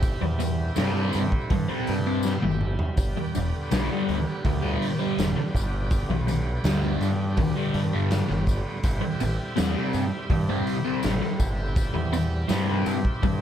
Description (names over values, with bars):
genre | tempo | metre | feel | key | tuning
psychedelic rock | 82 BPM | 4/4 | straight | unclear | A4 = 436 Hz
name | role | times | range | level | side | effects
bright tonewheel organ | sustained chords | 0.0-13.4 s | G3 to G4 | -36 LUFS | right 4 dB | slow rotary speaker, overdrive
growling picked electric bass | bass | 0.0-13.4 s | E1 to G2 | -27 LUFS | equal | overdrive
tanpura | drone | 0.0-13.4 s | G2 to G3 | -37 LUFS | equal | none
raw garage drum kit | drums | 0.0-13.4 s | hi-hat, kick drum, snare drum, toms | -28 LUFS | equal | none
tambourine | percussion | 0.0-13.3 s | none | -46 LUFS | left 11 dB | dub echo
thick fuzz guitar | riff | 0.2-13.3 s | G2 to C4 | -26 LUFS | left 1 dB | distortion, phaser
room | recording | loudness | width
studio reverb | echo-heavy mix | -23 LUFS | side -10 dB against mid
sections
0.0-13.4 A section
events
drum fill 2.2-3.0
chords
0.0 C/G; 3.0 G; 8.8 C/G